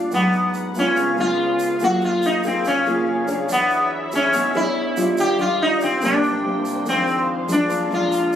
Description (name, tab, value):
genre	bossa nova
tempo	142 BPM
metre	4/4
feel	straight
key	unclear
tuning	A4 = 438 Hz
part	sitar	melody	0.0-8.4 s	Cb4 to G4	-20 LUFS	left 1 dB	none
part	nylon-string guitar	accompaniment	0.0-8.4 s	F2 to Db5	-22 LUFS	equal	none
part	muted chamber string section	sustained chords	0.0-8.4 s	Gb3 to G5	-29 LUFS	left 1 dB	none
part	egg shaker	percussion	0.1-8.4 s	none	-37 LUFS	right 3 dB	none
room	moderate large studio reverb, RT60 1.0 s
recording	recorded on a phone in the room, club reverb, compression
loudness	-17 LUFS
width	side -9 dB against mid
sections	0.0-8.4 A section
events	none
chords	0.1 Abm7; 1.0 Db7; 1.8 Gbmaj9; 3.5 E13; 5.2 Ebmaj9; 6.0 Cm7; 6.9 Fm7; 7.7 Bb7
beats	| 0.12 0.54 0.96 1.38 | 1.80 2.22 2.64 3.06 | 3.49 3.91 4.33 4.75 | 5.17 5.59 6.01 6.43 | 6.86 7.28 7.70 8.12